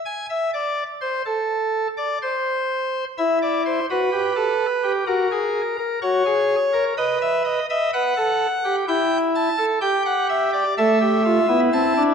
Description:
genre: classical, baroque-style 4-part fugue for pipe organ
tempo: 63 BPM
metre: 4/4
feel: straight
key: unclear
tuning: A4 = 440 Hz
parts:
  - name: pipe organ, cornet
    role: solo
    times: 0.1-12.1 s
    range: A3 to A5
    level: -19 LUFS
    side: equal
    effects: none
room: wet recital hall reverb, RT60 1.5 s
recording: dark, warm production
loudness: -19 LUFS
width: side -6 dB against mid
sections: 0.0-12.1 A section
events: none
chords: 0.0 N.C.; 3.2 Em; 5.1 F#; 7.0 B7; 8.9 Em; 10.8 Am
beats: 0.29 1.25 2.21 | 3.18 4.13 5.08 6.03 | 6.98 7.93 8.88 9.83 | 10.78 11.73

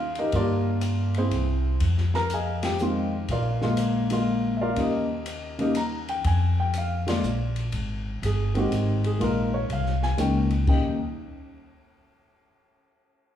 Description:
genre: jazz piano trio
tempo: 122 BPM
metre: 3/4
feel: swing 66% on 8ths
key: Eb major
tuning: A4 = 440 Hz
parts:
  - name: dark baby grand piano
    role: melody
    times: 0.0-11.0 s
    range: Db3 to Bb5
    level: -26 LUFS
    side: left 1 dB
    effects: none
  - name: upright bass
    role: bass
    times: 0.0-11.0 s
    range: G1 to G2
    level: -26 LUFS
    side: equal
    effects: none
  - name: open jazz drum kit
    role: drums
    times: 0.2-10.8 s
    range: crash cymbal, hi-hat, kick drum, ride cymbal, snare drum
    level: -34 LUFS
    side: left 3 dB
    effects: none
room: wet large studio reverb, RT60 1.3 s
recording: heard from further back in the room, studio ambience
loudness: -23 LUFS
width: side -10 dB against mid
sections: 0.0-7.7 A section; 7.7-10.7 B section; 10.7-12.2 C section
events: band accent 2.6, 7.0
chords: 0.3 Gm7; 1.3 Caug; 1.8 Fm7; 3.3 Bb7; 4.8 Eb7; 6.3 Fm; 7.2 Bb; 7.7 Abmaj7; 9.2 Bb7sus4; 10.7 Eb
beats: | 0.33 0.82 1.32 | 1.81 2.31 2.80 | 3.29 3.79 4.28 | 4.77 5.27 5.76 | 6.25 6.74 7.24 | 7.73 8.22 8.71 | 9.20 9.70 10.19 | 10.68

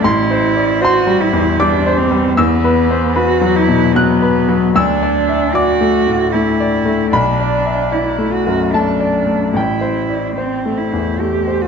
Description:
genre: neoclassical piano and strings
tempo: 76 BPM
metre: 3/4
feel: rubato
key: unclear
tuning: A4 = 435 Hz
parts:
  - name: rich cello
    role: second line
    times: 0.0-11.7 s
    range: B3 to G4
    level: -17 LUFS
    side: right 7 dB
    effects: none
  - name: bright baby grand piano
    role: accompaniment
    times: 0.0-11.7 s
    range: A1 to F#6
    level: -14 LUFS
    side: left 3 dB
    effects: none
room: wet scoring stage reverb, RT60 2.0 s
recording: dark, warm production, nothing above 7.8 kHz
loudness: -12 LUFS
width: side -6 dB against mid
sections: 0.0-11.7 A section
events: none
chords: 0.0 Am7; 2.4 Esus2; 4.7 Dsus2; 7.1 Bm7; 9.5 Am7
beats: | 0.03 0.82 1.60 | 2.38 3.17 3.95 | 4.75 5.54 6.33 | 7.12 7.92 8.73 | 9.55 10.38 11.20

